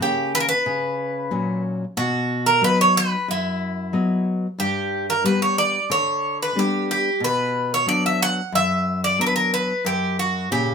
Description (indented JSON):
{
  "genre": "greek folk, Greek bouzouki band",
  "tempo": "91 BPM",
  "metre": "4/4",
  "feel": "straight",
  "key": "unclear",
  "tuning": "A4 = 440 Hz",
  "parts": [
    { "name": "Greek bouzouki", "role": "melody", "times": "0.0-10.7 s", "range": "E4 to F#5", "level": "-20 LUFS", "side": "right 1 dB", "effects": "none" },
    { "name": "nylon-string guitar", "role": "accompaniment", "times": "0.0-10.7 s", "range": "F#2 to D#5", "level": "-24 LUFS", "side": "left 2 dB", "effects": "none" }
  ],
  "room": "wet small room reverb, RT60 0.6 s",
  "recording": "minimal, uncompressed stereo recording",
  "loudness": "-19 LUFS",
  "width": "side -6 dB against mid",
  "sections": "0.0-10.7 A section",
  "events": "none",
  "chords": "0.0 F#; 2.0 B; 4.6 G; 7.2 Bm; 9.8 F#",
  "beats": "0.00 0.66 1.31 | 1.97 2.62 3.28 3.94 | 4.59 5.25 5.91 6.56 | 7.22 7.88 8.54 9.19 | 9.85 10.50"
}